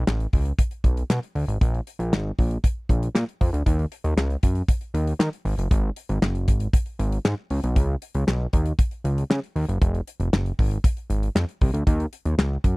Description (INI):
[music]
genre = early-eighties boogie funk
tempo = 117 BPM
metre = 4/4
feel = straight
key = Eb minor from 3.7 s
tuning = A4 = 439 Hz
[part]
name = fat analog bass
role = bass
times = 0.0-12.8 s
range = F1 to Eb3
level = -23 LUFS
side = equal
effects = none
[part]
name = damped 70s drum kit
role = drums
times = 0.1-12.8 s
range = handclaps, hi-hat, kick drum, snare drum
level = -21 LUFS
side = equal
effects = none
[sound]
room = little or no reverb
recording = dry, close 1970s-style studio recording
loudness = -21 LUFS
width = side -26 dB against mid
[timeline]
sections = 0.0-3.7 A section; 3.7-12.8 B section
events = none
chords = none